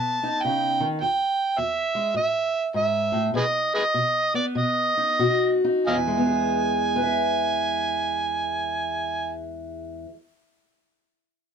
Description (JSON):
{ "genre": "acoustic country blues, solo or duo", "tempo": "89-105 BPM", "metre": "4/4", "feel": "swing 64% on 8ths", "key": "E major", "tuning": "A4 = 439 Hz", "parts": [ { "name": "overdriven harmonica", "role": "melody", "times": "0.0-9.3 s", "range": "G#4 to A5", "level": "-23 LUFS", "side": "right 3 dB", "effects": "none" }, { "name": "fingerpicked steel-string acoustic guitar", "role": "accompaniment", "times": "0.0-10.2 s", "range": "E2 to E5", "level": "-26 LUFS", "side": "left 2 dB", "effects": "none" } ], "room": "light reverb", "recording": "dark, warm production", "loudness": "-21 LUFS", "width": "side -6 dB against mid", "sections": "0.0-5.9 A section; 5.9-8.6 B section", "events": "slowing down 1.0-5.9", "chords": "0.0 B; 1.0 E; 2.2 A5; 3.3 B; 5.9 E" }